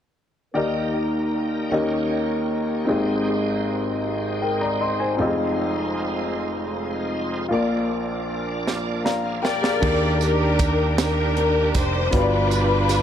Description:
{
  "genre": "slow gospel",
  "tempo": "52 BPM (dotted quarters)",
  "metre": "6/8",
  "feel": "straight",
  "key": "Eb major",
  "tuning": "A4 = 438 Hz",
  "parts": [
    { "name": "clear grand piano", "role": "accompaniment", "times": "0.5-13.0 s", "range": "F1 to C6", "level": "-23 LUFS", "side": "left 2 dB", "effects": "dub echo" },
    { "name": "dark French horn section", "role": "sustained chords", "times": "0.5-9.8 s", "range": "F3 to Bb4", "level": "-30 LUFS", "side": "right 2 dB", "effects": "stereo widening" },
    { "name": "bright tonewheel organ", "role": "sustained chords", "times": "0.6-13.0 s", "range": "Eb3 to G5", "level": "-32 LUFS", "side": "right 3 dB", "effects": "slow rotary speaker, chorus vibrato" },
    { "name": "tight funk drum kit", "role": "drums", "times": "8.7-13.0 s", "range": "crash cymbal, hi-hat, kick drum, snare drum", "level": "-26 LUFS", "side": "right 2 dB", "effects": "dub echo" },
    { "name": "rich studio string section", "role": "melody", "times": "9.4-13.0 s", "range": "D4 to D5", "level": "-21 LUFS", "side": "left 1 dB", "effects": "dub echo" },
    { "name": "fingered electric bass", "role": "bass", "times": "9.8-13.0 s", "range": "F1 to Eb2", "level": "-23 LUFS", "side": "right 1 dB", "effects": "none" },
    { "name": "tambourine", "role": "percussion", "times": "10.2-13.0 s", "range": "none", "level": "-34 LUFS", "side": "right 12 dB", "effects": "none" }
  ],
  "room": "light reverb, small room ambience",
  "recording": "echo-heavy mix",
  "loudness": "-20 LUFS",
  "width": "side -9 dB against mid",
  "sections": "0.6-9.8 A section; 9.8-13.0 B section",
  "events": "grand piano fill 8.7-9.8; drum fill 8.7-9.8",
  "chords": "0.6 Ebmaj7; 1.7 Eb7; 2.9 Abmaj7; 5.2 Fm7; 7.5 Bb; 9.8 Ebmaj7; 12.1 G7",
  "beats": "| 0.56 1.72 | 2.88 4.04 | 5.20 6.35 | 7.51 8.67 | 9.82 10.97 | 12.13"
}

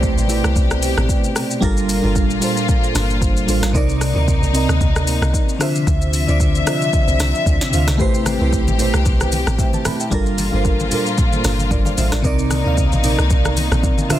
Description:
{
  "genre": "amapiano",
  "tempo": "113 BPM",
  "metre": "4/4",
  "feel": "swing 55% on 16ths",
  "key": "unclear",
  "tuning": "A4 = 439 Hz",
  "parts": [
    { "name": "crystalline FM electric piano", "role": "accompaniment", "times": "0.0-14.2 s", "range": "C3 to B5", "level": "-20 LUFS", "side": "right 2 dB", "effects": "chorus, tremolo" },
    { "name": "dark studio string section", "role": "sustained chords", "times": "0.0-14.2 s", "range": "Bb2 to E5", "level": "-23 LUFS", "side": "left 2 dB", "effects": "sidechain pumping" },
    { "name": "deep log drum bass", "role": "bass", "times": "0.0-13.8 s", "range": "G1 to D2", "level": "-19 LUFS", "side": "equal", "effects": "none" },
    { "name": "afro-pop drum kit", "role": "drums", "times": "0.0-14.2 s", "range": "hi-hat, kick drum, rim click, shaker, snare drum", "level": "-20 LUFS", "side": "equal", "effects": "soft clipping on snare" },
    { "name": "congas", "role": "percussion", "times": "8.3-14.2 s", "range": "none", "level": "-26 LUFS", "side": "left 2 dB", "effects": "none" }
  ],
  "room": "little or no reverb",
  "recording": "dense, heavily limited modern master",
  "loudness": "-15 LUFS",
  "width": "side -12 dB against mid",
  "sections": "0.0-14.2 A section",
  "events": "none",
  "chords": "0.0 Am9; 1.6 Gm9; 3.7 Cm9; 5.6 Dm9; 8.0 Am9; 10.1 Gm9; 12.2 Cm9",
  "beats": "0.03 0.56 1.09 | 1.62 2.15 2.69 3.22 | 3.75 4.28 4.81 5.34 | 5.87 6.40 6.93 7.46 | 8.00 8.53 9.06 9.59 | 10.12 10.65 11.18 11.71 | 12.24 12.77 13.30 13.84"
}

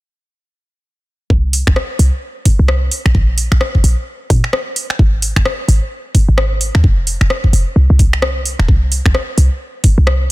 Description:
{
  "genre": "UK garage, two-step garage",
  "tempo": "130 BPM",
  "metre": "4/4",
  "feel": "swing 61% on 16ths",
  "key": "unclear",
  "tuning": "A4 = 441 Hz",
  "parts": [
    { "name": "short 808-style bass", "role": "bass", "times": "1.3-10.3 s", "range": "Eb1 to Bb2", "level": "-12 LUFS", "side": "equal", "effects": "tube saturation" },
    { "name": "electronic kick drum", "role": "drums", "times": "1.3-10.0 s", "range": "none", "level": "-12 LUFS", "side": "equal", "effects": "none" },
    { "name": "garage drum kit", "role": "drums", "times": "1.5-10.2 s", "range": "finger snaps, hi-hat, rim click", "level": "-19 LUFS", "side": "equal", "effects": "soft clipping on snare" }
  ],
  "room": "digital ambience",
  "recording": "dense, heavily limited modern master",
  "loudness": "-12 LUFS",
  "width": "side -19 dB against mid",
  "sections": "1.3-10.3 A section",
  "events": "none",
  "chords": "none",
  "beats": "| 1.30 1.76 2.22 2.69 | 3.15 3.61 4.07 4.53 | 4.99 5.46 5.92 6.38 | 6.84 7.30 7.76 8.22 | 8.69 9.15 9.61 10.07"
}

